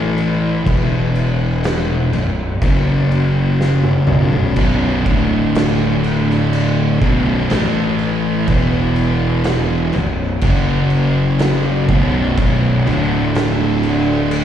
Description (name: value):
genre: stoner and doom metal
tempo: 62 BPM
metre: 4/4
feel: straight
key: B minor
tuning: A4 = 440 Hz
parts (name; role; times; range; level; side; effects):
- phased string machine; sustained chords; 0.0-14.4 s; F#3 to F#5; -28 LUFS; right 3 dB; ensemble chorus, phaser
- thick fuzz guitar; riff; 0.0-14.4 s; B1 to A3; -16 LUFS; left 3 dB; distortion
- fuzz fingered electric bass; bass; 0.0-14.4 s; B0 to A1; -22 LUFS; right 1 dB; overdrive
- oversized low-tuned drum kit; drums; 0.2-14.4 s; crash cymbal, kick drum, snare drum, toms; -21 LUFS; right 1 dB; none
- thick fuzz guitar; riff; 4.6-14.4 s; B1 to A3; -20 LUFS; right 11 dB; distortion, slapback echo
room: little or no reverb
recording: live gig heard through the venue's PA, recital hall reverb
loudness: -14 LUFS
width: side -10 dB against mid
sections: 0.0-14.4 A section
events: drum fill 3.6-4.6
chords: 0.0 A5; 0.7 E5; 2.1 B5; 2.6 F#5; 4.1 B5; 5.1 D5; 7.0 B5; 7.5 A5; 8.5 E5; 9.9 B5; 10.4 F#5; 11.9 B5; 12.9 D5